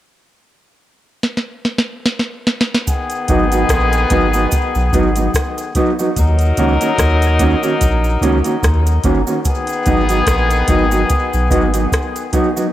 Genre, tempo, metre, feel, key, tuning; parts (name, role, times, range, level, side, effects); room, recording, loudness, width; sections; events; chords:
dub reggae; 73 BPM; 4/4; swing 56% on 16ths; G# minor; A4 = 440 Hz
soft vintage rhythm box; drums; 1.2-12.5 s; hi-hat, kick drum, rim click, snare drum; -18 LUFS; equal
clear horn section; second line; 2.9-12.3 s; D#3 to A#4; -18 LUFS; left 3 dB; tape echo
cabasa; percussion; 2.9-12.7 s; -32 LUFS; right 8 dB; tape echo
mellow electric guitar; accompaniment; 3.3-12.7 s; D#3 to F#4; -18 LUFS; right 2 dB; tape echo
soft dub sub bass; bass; 3.3-11.9 s; G1 to D#2; -16 LUFS; equal
light reverb; echo-heavy mix; -13 LUFS; side -13 dB against mid
0.0-2.9 A section; 2.9-12.7 B section
drum fill 1.2-2.9
0.0 N.C.; 2.9 G#m7; 6.2 D#m7; 9.4 G#m7